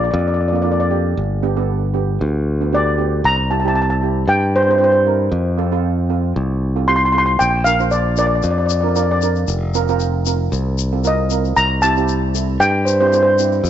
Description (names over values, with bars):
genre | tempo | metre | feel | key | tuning
calypso | 115 BPM | 4/4 | swing 54% on 16ths | unclear | A4 = 442 Hz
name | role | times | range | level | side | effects
steel pan | melody | 0.0-13.3 s | C5 to C6 | -17 LUFS | left 1 dB | slapback echo
steel pan | accompaniment | 0.0-13.6 s | Bb3 to C5 | -23 LUFS | right 14 dB | none
modern bright fingered electric bass | bass | 0.0-13.7 s | F1 to G2 | -18 LUFS | left 1 dB | none
tube shaker | percussion | 7.4-13.7 s | none | -29 LUFS | left 18 dB | none
room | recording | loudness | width
light reverb | 1960s-style stereo with parts hard left and right, nothing above 7.7 kHz | -14 LUFS | side -10 dB against mid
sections
0.0-13.7 A section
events
none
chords
0.0 Bb; 1.2 G; 3.2 C7; 5.3 F; 7.4 Bb; 9.5 F7sus4; 11.6 C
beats
0.13 0.65 | 1.17 1.69 2.21 2.73 | 3.25 3.77 4.29 4.81 | 5.33 5.84 6.36 6.88 | 7.40 7.92 8.44 8.96 | 9.48 10.00 10.52 11.04 | 11.56 12.08 12.60 13.12 | 13.64